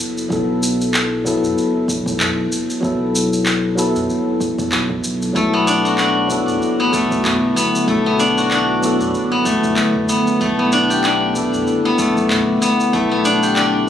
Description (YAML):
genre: organic downtempo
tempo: 95 BPM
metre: 4/4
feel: swing 57% on 16ths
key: B minor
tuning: A4 = 438 Hz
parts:
  - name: tine electric piano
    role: accompaniment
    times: 0.0-13.9 s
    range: F#3 to A4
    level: -20 LUFS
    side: left 1 dB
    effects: wide subtle chorus, sidechain pumping, digital delay
  - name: warm sub bass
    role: bass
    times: 0.0-13.9 s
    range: F#1 to B1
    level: -28 LUFS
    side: equal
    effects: none
  - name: electronic shaker and handclaps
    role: drums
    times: 0.0-13.7 s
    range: none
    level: -23 LUFS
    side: equal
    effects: none
  - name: electronic kick drum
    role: drums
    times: 0.3-13.1 s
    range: none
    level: -26 LUFS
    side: right 1 dB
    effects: none
  - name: udu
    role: percussion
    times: 1.4-12.4 s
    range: none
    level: -36 LUFS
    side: right 1 dB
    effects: none
  - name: ethereal airy pad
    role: sustained chords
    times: 6.7-13.9 s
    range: D3 to G5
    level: -24 LUFS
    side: right 2 dB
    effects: ensemble chorus, built-in reverb, sidechain pumping
  - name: steel-string zither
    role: arpeggios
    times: 5.4-13.9 s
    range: A3 to G4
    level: -16 LUFS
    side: left 2 dB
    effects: digital delay
room: light reverb, digital ambience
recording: recorded on a phone in the room, studio reverb, compression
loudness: -14 LUFS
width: side -9 dB against mid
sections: 0.0-13.9 A section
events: none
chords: 0.0 B7sus4/F#; 5.4 Bm7; 10.4 Gadd9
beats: | 0.30 0.94 1.57 2.20 | 2.83 3.46 4.09 4.72 | 5.36 5.99 6.62 7.25 | 7.88 8.52 9.15 9.78 | 10.41 11.04 11.67 12.30 | 12.94 13.57